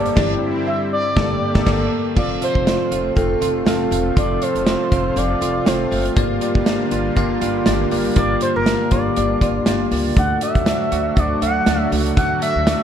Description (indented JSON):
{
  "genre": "1980s-style pop",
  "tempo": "120 BPM",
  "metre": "4/4",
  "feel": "swing 55% on 16ths",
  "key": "G dorian",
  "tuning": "A4 = 444 Hz",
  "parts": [
    { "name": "expressive synth lead", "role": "melody", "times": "0.0-12.8 s", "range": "A4 to F#5", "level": "-22 LUFS", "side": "right 1 dB", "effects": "chorus, digital delay" },
    { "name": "bell-like tine electric piano", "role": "accompaniment", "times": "0.0-12.8 s", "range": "G2 to F5", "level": "-22 LUFS", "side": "left 3 dB", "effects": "wide subtle chorus" },
    { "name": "lush unison pad", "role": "sustained chords", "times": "0.0-12.8 s", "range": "C3 to G4", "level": "-26 LUFS", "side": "right 2 dB", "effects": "chorus" },
    { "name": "direct-recorded clean electric guitar", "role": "riff", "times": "0.0-12.8 s", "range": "F3 to A4", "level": "-28 LUFS", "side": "right 7 dB", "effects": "analog chorus, digital delay" },
    { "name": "upright bass", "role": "bass", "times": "0.0-12.7 s", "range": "E1 to D2", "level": "-26 LUFS", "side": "equal", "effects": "none" },
    { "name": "modern studio drum kit", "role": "drums", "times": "0.1-12.8 s", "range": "crash cymbal, hi-hat, kick drum, snare drum", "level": "-20 LUFS", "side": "right 1 dB", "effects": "none" },
    { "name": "funky polysynth comp", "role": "stabs", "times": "0.2-1.8 s", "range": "D3 to A4", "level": "-28 LUFS", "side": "right 1 dB", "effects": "chorus, digital delay" }
  ],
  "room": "moderate lush hall reverb, RT60 1.6 s, small room ambience",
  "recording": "bright 1980s-style digital production",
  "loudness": "-16 LUFS",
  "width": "side -9 dB against mid",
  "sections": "0.0-2.2 A section; 2.2-12.8 B section",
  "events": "band accent 0.2-2.2",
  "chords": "0.2 Cadd9/G; 1.2 Gmadd9; 2.2 F; 6.2 Gm7; 10.2 D"
}